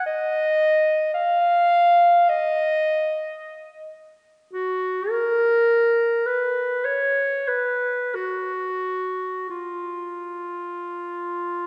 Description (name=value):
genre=classical, free, expressive piece for unaccompanied clarinet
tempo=39-56 BPM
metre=4/4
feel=rubato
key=unclear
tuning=A4 = 440 Hz
part: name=mellow clarinet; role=solo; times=0.0-11.7 s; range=E#4 to E#5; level=-22 LUFS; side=equal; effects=none
room=wet concert hall reverb, RT60 2.2 s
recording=recorded in a church or concert hall, nothing above 10.3 kHz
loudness=-22 LUFS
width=mono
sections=0.0-11.7 A section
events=none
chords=none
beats=| 0.05 1.16 2.27 3.40 | 4.54 5.67 6.86 8.14 | 9.51 11.02